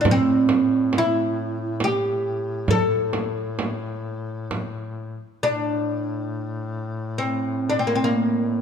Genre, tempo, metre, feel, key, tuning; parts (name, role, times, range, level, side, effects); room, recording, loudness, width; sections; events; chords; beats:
caucasian folk, Caucasian lament; 68 BPM; 3/4; rubato; A phrygian; A4 = 445 Hz
oud; melody; 0.0-8.6 s; Bb3 to A4; -22 LUFS; right 1 dB
clear duduk; drone; 0.0-8.6 s; A2; -30 LUFS; left 3 dB
frame drum; percussion; 0.1-4.7 s; -25 LUFS; right 3 dB
light reverb; dark, warm production; -21 LUFS; side -7 dB against mid
0.0-5.4 A section; 5.4-8.6 B section
| 0.06 0.93 1.80 | 2.68 3.58 4.50 | 5.42 6.31 7.18 | 8.06